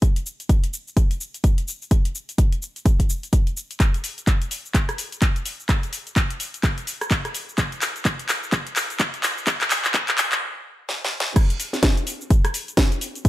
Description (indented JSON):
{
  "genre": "house",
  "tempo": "127 BPM",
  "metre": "4/4",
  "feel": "swing 60% on 16ths",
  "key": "none",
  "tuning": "none",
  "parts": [
    { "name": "electronic kick drum", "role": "drums", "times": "0.0-13.3 s", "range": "none", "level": "-18 LUFS", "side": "equal", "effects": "none" },
    { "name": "house drum kit", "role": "drums", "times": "0.0-13.3 s", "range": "crash cymbal, handclaps, hi-hat, rim click, shaker, snare drum", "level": "-24 LUFS", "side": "equal", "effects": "high-pass filter on perc, high-pass filter on hats, high-pass filter on snare, high-pass filter on cymbals, high-pass filter on room" }
  ],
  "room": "light reverb",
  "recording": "high-pass filter",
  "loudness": "-20 LUFS",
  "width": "side -15 dB against mid",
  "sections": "0.0-3.8 A section; 3.8-11.4 B section; 11.4-13.3 C section",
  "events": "build-up 3.8-11.4; drum fill 3.8-10.4, 10.9-11.4; filter sweep 3.8-11.4; stop 10.4-11.4; drop 11.4-13.3",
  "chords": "none",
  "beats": "| 0.02 0.49 0.97 1.44 | 1.91 2.38 2.86 3.33 | 3.80 4.27 4.75 5.22 | 5.69 6.16 6.64 7.11 | 7.58 8.05 8.53 9.00 | 9.47 9.94 10.41 10.89 | 11.36 11.83 12.30 12.78 | 13.25"
}